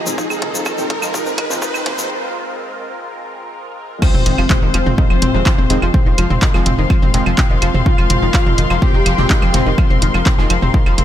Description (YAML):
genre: melodic techno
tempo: 125 BPM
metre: 4/4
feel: straight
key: unclear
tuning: A4 = 441 Hz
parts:
  - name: fat analog lead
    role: melody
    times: 0.0-9.7 s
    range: C4 to G4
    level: -25 LUFS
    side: left 1 dB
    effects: ensemble chorus, sidechain pumping, ping-pong delay
  - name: lush unison pad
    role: sustained chords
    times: 0.0-11.0 s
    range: F2 to C5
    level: -26 LUFS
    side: left 2 dB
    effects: chorus, phaser, sidechain pumping
  - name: synth brass stab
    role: stabs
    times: 0.0-2.1, 5.3-10.5 s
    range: F3 to C4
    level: -27 LUFS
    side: right 2 dB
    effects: none
  - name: riser and impact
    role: sound effects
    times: 0.0-5.9 s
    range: none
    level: -25 LUFS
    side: right 1 dB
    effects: none
  - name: muted studio string section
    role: texture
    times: 0.0-11.0 s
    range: F3 to C6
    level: -25 LUFS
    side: left 6 dB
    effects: sidechain pumping
  - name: analog pluck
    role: arpeggios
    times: 0.1-11.0 s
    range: Eb3 to C5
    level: -24 LUFS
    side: equal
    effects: chorus, sidechain pumping, tape echo
  - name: punchy analog drum machine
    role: drums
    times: 0.1-11.0 s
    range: claves, crash cymbal, handclaps, hi-hat, toms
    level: -20 LUFS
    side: right 1 dB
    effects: sidechain pumping on hats, sidechain pumping on toms, sidechain pumping on perc, sidechain pumping on cymbals
  - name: tube shaker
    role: percussion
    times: 0.1-2.1 s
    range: none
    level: -26 LUFS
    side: left 3 dB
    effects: none
  - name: electronic kick drum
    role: drums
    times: 0.2-10.8 s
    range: none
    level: -14 LUFS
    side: equal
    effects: overdrive, high-pass filter on kick
  - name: rich chamber violin section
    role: second line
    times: 4.0-9.7 s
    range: C5 to G5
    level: -29 LUFS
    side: left 2 dB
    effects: vintage 12-bit sampler grit, sidechain pumping, tape echo
  - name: tight sequencer bass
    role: bass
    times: 4.1-11.0 s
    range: F1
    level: -18 LUFS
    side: equal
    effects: sidechain pumping
room: little or no reverb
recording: high-pass filter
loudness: -13 LUFS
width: side -11 dB against mid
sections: 0.0-4.0 A section; 4.0-11.0 B section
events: build-up 0.0-4.0; drum fill 0.0-2.1; riser 0.0-2.1; filter sweep on synth arpeggio sound 0.0-4.0; filter sweep on analog synth pad 0.0-4.0; filter sweep 0.0-4.0; break 2.1-4.0; drop 4.0-11.0; impact 4.0-5.9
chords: 0.0 Abadd9/F